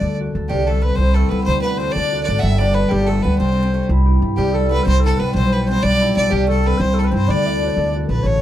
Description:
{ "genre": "celtic folk, Celtic jig", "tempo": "124 BPM (dotted quarters)", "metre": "6/8", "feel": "straight", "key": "unclear", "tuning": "A4 = 440 Hz", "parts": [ { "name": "clear fiddle", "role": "melody", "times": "0.0-8.4 s", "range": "G4 to F#5", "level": "-23 LUFS", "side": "right 1 dB", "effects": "none" }, { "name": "baroque flute", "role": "second line", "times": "0.0-8.4 s", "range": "G4 to E5", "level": "-24 LUFS", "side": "left 4 dB", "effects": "none" }, { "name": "concert harp", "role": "accompaniment", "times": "0.0-8.4 s", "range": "B2 to A4", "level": "-20 LUFS", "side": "left 1 dB", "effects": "none" }, { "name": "upright bass", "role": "bass", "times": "0.0-8.4 s", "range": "G1 to G2", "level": "-19 LUFS", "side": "right 1 dB", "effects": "none" }, { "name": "Irish bouzouki", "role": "second line", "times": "0.5-7.9 s", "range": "G3 to E4", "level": "-26 LUFS", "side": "right 4 dB", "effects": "none" } ], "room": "light reverb", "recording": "dark, warm production", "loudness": "-15 LUFS", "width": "side -12 dB against mid", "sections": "0.5-8.2 A section", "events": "none", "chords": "0.0 D; 0.5 C; 1.5 D; 2.4 G5; 3.4 C; 5.3 G/B; 6.3 C; 7.3 D" }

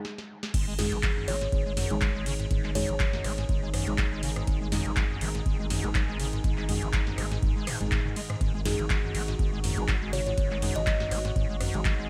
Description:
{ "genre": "acid house", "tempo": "122 BPM", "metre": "4/4", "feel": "swing 55% on 16ths", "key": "unclear", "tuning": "A4 = 440 Hz", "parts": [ { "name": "deep mellow chord stab", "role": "stabs", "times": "0.0-11.8 s", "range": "G#3 to G#4", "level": "-40 LUFS", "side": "equal", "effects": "chorus, dub echo" }, { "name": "booming analog drum machine", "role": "drums", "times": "0.0-12.0 s", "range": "crash cymbal, handclaps, hi-hat, ride cymbal, rim click, snare drum", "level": "-36 LUFS", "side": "equal", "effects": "none" }, { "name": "warm analog pad", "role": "sustained chords", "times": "0.5-12.1 s", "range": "G#2 to G#4", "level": "-42 LUFS", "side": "equal", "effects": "chorus, sidechain pumping" }, { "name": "acid bass, square", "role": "riff", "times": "0.5-12.1 s", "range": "F#2 to B3", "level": "-37 LUFS", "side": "equal", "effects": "overdrive, ensemble chorus, sidechain pumping, dub echo" }, { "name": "saturated sub bass", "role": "bass", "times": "0.5-12.1 s", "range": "F#1 to G#2", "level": "-36 LUFS", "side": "equal", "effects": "sidechain pumping" }, { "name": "electronic kick drum", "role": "drums", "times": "0.5-12.0 s", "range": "none", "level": "-31 LUFS", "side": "equal", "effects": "none" }, { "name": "kalimba", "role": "melody", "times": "0.8-3.2, 8.7-11.0 s", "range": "G#4 to D#5", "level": "-37 LUFS", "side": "equal", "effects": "digital delay" } ], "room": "digital ambience", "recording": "none", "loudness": "-28 LUFS", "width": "mono", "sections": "0.5-12.1 A section", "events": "break 0.0-0.5; drum fill 0.0-0.5; drop 0.5-12.1", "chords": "0.0 N.C.; 0.5 G#5" }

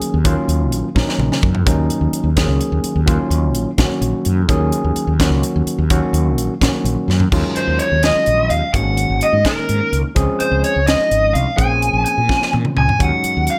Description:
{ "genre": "electric jazz fusion", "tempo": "85 BPM (dotted quarters)", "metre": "6/8", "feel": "straight", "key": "Eb dorian", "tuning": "A4 = 439 Hz", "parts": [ { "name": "overdriven tine electric piano", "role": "accompaniment", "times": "0.0-13.6 s", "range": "Eb3 to Ab4", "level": "-23 LUFS", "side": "equal", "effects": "none" }, { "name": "mellow fretless electric bass", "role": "bass", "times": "0.0-13.5 s", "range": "Ab1 to Bb2", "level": "-21 LUFS", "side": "equal", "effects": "none" }, { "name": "crisp fusion drum kit", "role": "drums", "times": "0.0-13.6 s", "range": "crash cymbal, hi-hat, kick drum, snare drum, toms", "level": "-22 LUFS", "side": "equal", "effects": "none" }, { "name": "lead guitar through a small cranked amp", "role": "melody", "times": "7.6-13.6 s", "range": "Bb4 to Ab5", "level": "-19 LUFS", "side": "equal", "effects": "overdrive" } ], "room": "light reverb", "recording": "none", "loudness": "-17 LUFS", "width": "mono", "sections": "0.0-7.3 A section; 7.3-13.6 B section", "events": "drum fill 1.0-1.7, 7.1, 12.3-13.0", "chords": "0.0 Ebm11; 8.7 Ab9sus4; 10.2 Dbmaj7; 11.6 Bbm9; 13.0 Ebm11" }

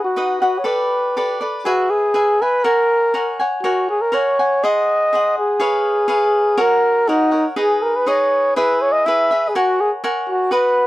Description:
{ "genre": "mexican folk", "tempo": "122 BPM", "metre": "2/4", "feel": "straight", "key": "unclear", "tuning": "A4 = 440 Hz", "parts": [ { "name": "dark trumpet", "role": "melody", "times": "0.0-10.9 s", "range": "D#4 to E5", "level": "-16 LUFS", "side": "equal", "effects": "none" }, { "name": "cavaquinho", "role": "accompaniment", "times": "0.0-10.9 s", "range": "D#4 to G#5", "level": "-21 LUFS", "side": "equal", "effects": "none" } ], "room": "little or no reverb", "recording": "dry, close 1970s-style studio recording", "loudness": "-15 LUFS", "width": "side -16 dB against mid", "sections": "0.0-10.9 A section", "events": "none", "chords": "0.0 B; 0.6 Gadd9; 1.6 E; 2.6 F#add9; 4.6 G#7; 5.6 C#7/G#; 6.6 F#; 7.6 G#m; 8.6 E; 9.5 F#add9" }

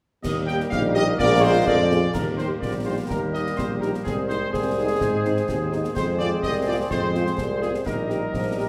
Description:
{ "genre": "military-style march for wind band", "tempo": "126 BPM", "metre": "2/4", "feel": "straight", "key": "Eb major", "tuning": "A4 = 442 Hz", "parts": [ { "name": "clear trumpet section", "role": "melody", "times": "0.2-8.7 s", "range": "Ab4 to G5", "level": "-30 LUFS", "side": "equal", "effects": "none" }, { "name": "warm woodwind section", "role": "second line", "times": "0.2-8.7 s", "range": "G4 to Eb5", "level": "-32 LUFS", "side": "equal", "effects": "none" }, { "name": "warm trombone section", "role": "sustained chords", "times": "0.2-8.6 s", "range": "G3 to Eb4", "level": "-32 LUFS", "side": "equal", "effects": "none" }, { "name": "warm tuba", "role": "bass", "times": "0.2-8.7 s", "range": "Bb1 to Ab2", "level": "-27 LUFS", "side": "equal", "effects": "none" }, { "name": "concert snare drum, clash cymbals and concert bass drum", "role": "drums", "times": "0.2-8.7 s", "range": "none", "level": "-34 LUFS", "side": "equal", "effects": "none" }, { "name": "mellow French horn section", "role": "accompaniment", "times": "0.5-8.7 s", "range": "G3 to Ab4", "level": "-33 LUFS", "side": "equal", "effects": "none" }, { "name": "warm euphonium", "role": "second line", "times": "0.7-1.9, 8.3-8.7 s", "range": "F3 to F4", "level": "-28 LUFS", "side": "equal", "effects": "none" } ], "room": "wet scoring stage reverb, RT60 2.0 s", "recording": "none", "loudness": "-23 LUFS", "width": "mono", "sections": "0.2-2.1 A section; 2.1-8.7 B section", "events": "none", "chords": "0.2 Eb; 1.2 Bb7; 2.1 Eb; 4.0 Ab/C; 5.0 Ab; 6.0 Fm; 7.9 Eb/Bb" }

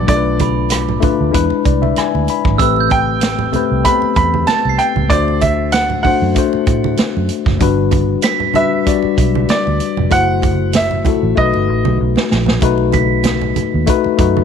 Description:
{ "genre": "lush 1970s-style soul", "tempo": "96 BPM", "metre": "4/4", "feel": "swing 54% on 16ths", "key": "unclear", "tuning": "A4 = 441 Hz", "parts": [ { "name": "bright grand piano", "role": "melody", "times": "0.0-12.0 s", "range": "D5 to B5", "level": "-18 LUFS", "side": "right 2 dB", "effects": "none" }, { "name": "tine electric piano", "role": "accompaniment", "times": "0.0-14.4 s", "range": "F#3 to B5", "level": "-17 LUFS", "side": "left 12 dB", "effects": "none" }, { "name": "vintage muted fingered electric bass", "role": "bass", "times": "0.0-14.4 s", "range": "F1 to A2", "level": "-18 LUFS", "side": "right 2 dB", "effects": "none" }, { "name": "vintage drum kit", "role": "drums", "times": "0.1-14.3 s", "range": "hi-hat, kick drum, rim click, snare drum", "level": "-17 LUFS", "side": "right 3 dB", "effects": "none" }, { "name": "congas", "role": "percussion", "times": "0.4-14.4 s", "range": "none", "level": "-25 LUFS", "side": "right 15 dB", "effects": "none" }, { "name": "glockenspiel with hard plastic mallets", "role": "texture", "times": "0.4-14.4 s", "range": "B5 to C7", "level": "-23 LUFS", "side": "right 19 dB", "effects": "none" } ], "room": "studio reverb", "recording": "1960s-style stereo with parts hard left and right", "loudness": "-12 LUFS", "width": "side -7 dB against mid", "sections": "0.0-12.6 A section; 12.6-14.4 B section", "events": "tine electric piano fill 1.3-2.6; drum fill 11.4-12.6", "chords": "0.1 Bm7b5; 1.3 E7; 2.6 Am9; 5.1 D7; 7.6 Gmaj7; 10.1 F#m7b5; 11.4 B7" }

